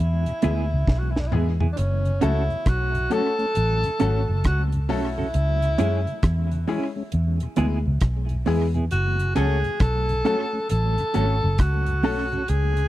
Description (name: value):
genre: roots reggae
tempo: 67 BPM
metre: 4/4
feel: swing 63% on 16ths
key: F# minor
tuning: A4 = 440 Hz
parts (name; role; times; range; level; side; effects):
- warm tenor saxophone; melody; 0.0-12.9 s; C#4 to A4; -27 LUFS; equal; dub echo
- vintage muted fingered electric bass; bass; 0.0-12.9 s; F#1 to F#2; -22 LUFS; equal; none
- mellow tonewheel organ; accompaniment; 0.3-12.8 s; E2 to C#4; -32 LUFS; left 2 dB; slow rotary speaker, tape echo
- deep reggae drum kit; drums; 0.3-12.9 s; hi-hat, kick drum, rim click, snare drum, toms; -24 LUFS; equal; tape echo
- clean electric guitar; accompaniment; 0.4-12.4 s; B3 to A4; -27 LUFS; right 5 dB; tremolo, dub echo
- bright upright piano; stabs; 0.4-12.2 s; G#3 to A4; -29 LUFS; left 7 dB; none
room: small room ambience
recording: dry, close 1970s-style studio recording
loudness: -20 LUFS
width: side -15 dB against mid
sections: 0.0-1.8 A section; 1.8-12.9 A section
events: drum fill 0.9-1.8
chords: 0.0 E; 1.8 F#m; 5.3 C#m; 7.1 E; 8.9 F#m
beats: 0.88 | 1.77 2.66 3.55 4.45 | 5.34 6.23 7.12 8.02 | 8.91 9.80 10.70 11.59 | 12.48